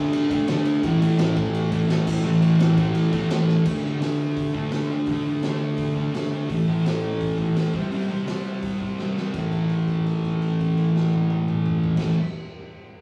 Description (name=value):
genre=garage rock duo or trio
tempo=169 BPM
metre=4/4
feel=straight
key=unclear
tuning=A4 = 439 Hz
part: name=thick fuzz guitar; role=riff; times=0.0-12.2 s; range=A2 to D4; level=-23 LUFS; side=equal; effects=distortion
part: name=raw garage drum kit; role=drums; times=0.1-12.1 s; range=crash cymbal, hi-hat, kick drum, ride cymbal, snare drum, toms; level=-32 LUFS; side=equal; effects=none
room=wet stone room reverb, RT60 1.1 s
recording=rough rehearsal-room recording, warm saturation, studio ambience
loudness=-23 LUFS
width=mono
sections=0.0-3.7 A section; 3.7-9.3 B section; 9.3-12.2 C section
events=drum fill 3.5, 9.0-9.3; held note 9.3-12.0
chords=0.0 D5; 0.8 A5; 3.7 D5; 6.5 A5; 7.7 C5; 9.3 A5